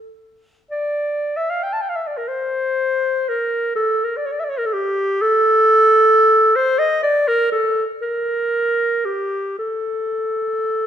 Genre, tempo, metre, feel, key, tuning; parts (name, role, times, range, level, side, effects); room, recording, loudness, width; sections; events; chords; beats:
classical, free, expressive piece for unaccompanied clarinet; 19-45 BPM (dotted quarters); 6/8; rubato; A4 = 440 Hz
warm clarinet; solo; 0.7-10.9 s; G4 to A5; -16 LUFS; equal
moderate recital hall reverb, RT60 1.8 s; minimal, uncompressed stereo recording; -16 LUFS; side -9 dB against mid
0.7-10.9 A section
| 0.71 2.28 | 3.76 5.20 | 6.57 8.03 | 9.59